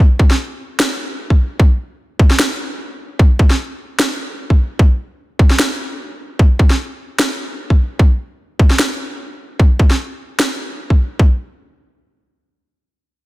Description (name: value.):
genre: future bass.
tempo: 150 BPM.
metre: 4/4.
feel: swing 54% on 16ths, half-time.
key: none.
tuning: none.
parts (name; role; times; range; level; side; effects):
electronic kick drum; drums; 0.2-11.3 s; none; -10 LUFS; equal; studio ambience.
electronic snare drum; drums; 0.3-10.5 s; none; -18 LUFS; equal; studio ambience.
room: little or no reverb.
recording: dense, heavily limited modern master.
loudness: -13 LUFS.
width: side -18 dB against mid.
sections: 0.0-11.2 A section; 11.2-13.3 B section.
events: none.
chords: none.